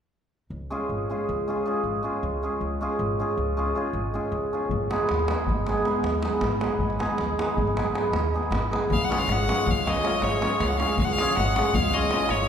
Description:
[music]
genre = balkan folk, Balkan wedding band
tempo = 315 BPM (eighths)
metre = 11/8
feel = straight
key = Db mixolydian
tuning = A4 = 440 Hz
[part]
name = upright bass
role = bass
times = 0.5-12.5 s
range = Ab1 to Eb2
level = -30 LUFS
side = equal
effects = none
[part]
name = cimbalom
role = accompaniment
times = 0.7-12.5 s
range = Ab3 to Ab4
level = -25 LUFS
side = right 1 dB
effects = none
[part]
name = davul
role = percussion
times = 4.7-12.4 s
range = none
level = -28 LUFS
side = left 1 dB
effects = none
[part]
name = bright violin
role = melody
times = 8.9-12.5 s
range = Db5 to Gb5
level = -26 LUFS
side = left 4 dB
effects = none
[sound]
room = wet scoring stage reverb, RT60 1.9 s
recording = recorded in a church or concert hall, lossy compression artefacts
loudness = -23 LUFS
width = side -8 dB against mid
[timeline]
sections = 0.5-8.9 A section; 8.9-12.5 B section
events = none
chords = 0.5 Db; 4.7 Abm; 8.9 Db

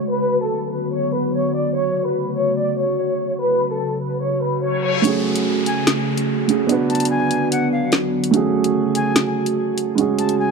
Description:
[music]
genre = hip hop, drill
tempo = 146 BPM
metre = 4/4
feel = half-time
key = F# minor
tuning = A4 = 440 Hz
[part]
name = warm studio violin section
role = melody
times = 0.0-5.0 s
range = A4 to D5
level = -21 LUFS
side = left 1 dB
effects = digital delay
[part]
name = glassy FM pad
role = sustained chords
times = 0.0-10.5 s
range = C#3 to G#4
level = -22 LUFS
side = left 1 dB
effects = ensemble chorus, built-in reverb
[part]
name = reverse cymbal and downlifter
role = sound effects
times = 4.6-8.3 s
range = none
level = -30 LUFS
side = left 3 dB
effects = none
[part]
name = dark baby grand piano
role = accompaniment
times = 5.0-10.5 s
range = G#3 to B4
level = -19 LUFS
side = right 7 dB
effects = low-pass filter
[part]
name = drill drum kit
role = drums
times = 5.0-10.4 s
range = hi-hat, snare drum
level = -21 LUFS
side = left 2 dB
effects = none
[part]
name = breathy reedy jazz flute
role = second line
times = 5.7-10.5 s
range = E#5 to A5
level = -26 LUFS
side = left 6 dB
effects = digital delay
[sound]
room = light reverb, small room ambience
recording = dark, warm production, low-pass filter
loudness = -17 LUFS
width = side -4 dB against mid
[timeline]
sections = 0.0-5.0 A section; 5.0-10.5 B section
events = filter sweep 0.0-5.0; reverse cymbal 4.6-5.0; kick muted 5.0-10.5; filter sweep on grand piano 5.0-10.5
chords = 0.1 Bm; 1.8 F#m; 3.4 C#sus4; 5.0 F#madd9; 6.7 Bm; 8.3 F#madd9; 10.0 C#sus4

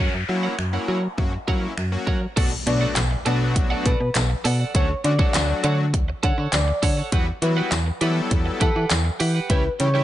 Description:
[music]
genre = dance-pop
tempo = 101 BPM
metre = 4/4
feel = straight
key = B minor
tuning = A4 = 439 Hz
[part]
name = big bright polysynth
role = accompaniment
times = 0.0-10.0 s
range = E3 to A4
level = -28 LUFS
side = left 3 dB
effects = chorus, sidechain pumping
[part]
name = twelve-string electric guitar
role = riff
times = 0.0-10.0 s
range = E4 to F#5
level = -29 LUFS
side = right 5 dB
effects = wide subtle chorus
[part]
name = slap-like FM bass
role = bass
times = 0.0-10.0 s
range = B1 to F#3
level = -23 LUFS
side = equal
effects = sidechain pumping
[part]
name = noise sweep and impact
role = sound effects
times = 0.0-4.7 s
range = none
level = -34 LUFS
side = left 1 dB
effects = none
[part]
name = pop drum kit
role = drums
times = 0.6-9.9 s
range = crash cymbal, finger snaps, handclaps, hi-hat, kick drum, snare drum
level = -23 LUFS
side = equal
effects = none
[part]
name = expressive synth lead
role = melody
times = 2.7-10.0 s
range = A4 to F#5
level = -28 LUFS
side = left 1 dB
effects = chorus, digital delay
[part]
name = tambourine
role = percussion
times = 3.0-9.0 s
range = none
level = -34 LUFS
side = left 9 dB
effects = none
[sound]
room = little or no reverb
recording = nothing above 10.9 kHz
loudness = -19 LUFS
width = side -13 dB against mid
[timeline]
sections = 0.0-2.4 A section; 2.4-10.0 B section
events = noise sweep 0.0-2.4; drop 2.4-10.0; impact 2.4-4.7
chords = 0.0 F#; 2.4 Bm7; 4.7 Dmaj7; 7.1 Emadd9; 9.5 C#dim

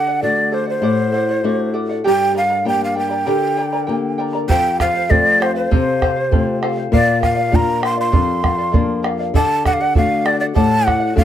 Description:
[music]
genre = andean folk, Andean ensemble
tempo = 99 BPM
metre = 2/4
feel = straight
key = unclear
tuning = A4 = 440 Hz
[part]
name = breathy large quena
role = melody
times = 0.0-11.2 s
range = C5 to C6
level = -18 LUFS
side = right 1 dB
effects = plate reverb
[part]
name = charango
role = accompaniment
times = 0.0-11.2 s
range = G4 to Bb5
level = -23 LUFS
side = right 1 dB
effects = none
[part]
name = flamenco guitar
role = accompaniment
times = 0.0-11.2 s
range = F2 to G4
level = -20 LUFS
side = left 4 dB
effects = none
[part]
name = bombo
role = percussion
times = 4.5-11.2 s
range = none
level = -17 LUFS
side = right 1 dB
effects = none
[sound]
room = light reverb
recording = close, detailed microphones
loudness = -14 LUFS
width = side -10 dB against mid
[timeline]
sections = 0.0-4.5 A section; 4.5-11.2 A section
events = none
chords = 0.0 D; 2.1 Gm; 4.5 F; 6.9 Bb; 9.3 D

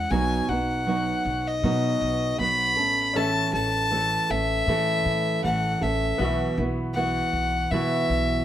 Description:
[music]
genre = acoustic pop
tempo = 79 BPM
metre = 4/4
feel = swing 55% on 16ths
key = unclear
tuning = A4 = 440 Hz
[part]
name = warm violin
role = melody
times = 0.0-8.4 s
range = D#5 to B5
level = -25 LUFS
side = left 2 dB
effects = none
[part]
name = nylon-string guitar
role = accompaniment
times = 0.0-8.4 s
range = A2 to A4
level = -26 LUFS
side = right 3 dB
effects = none
[part]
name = upright bass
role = bass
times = 0.0-8.4 s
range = A1 to B2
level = -30 LUFS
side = left 1 dB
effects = none
[part]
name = bright upright piano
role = accompaniment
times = 3.1-8.4 s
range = B3 to E5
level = -35 LUFS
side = left 6 dB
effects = none
[sound]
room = moderate studio reverb, RT60 0.7 s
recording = none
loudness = -22 LUFS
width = side -11 dB against mid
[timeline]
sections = 0.0-8.4 A section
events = none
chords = 0.1 B; 2.8 A; 6.2 Bsus4

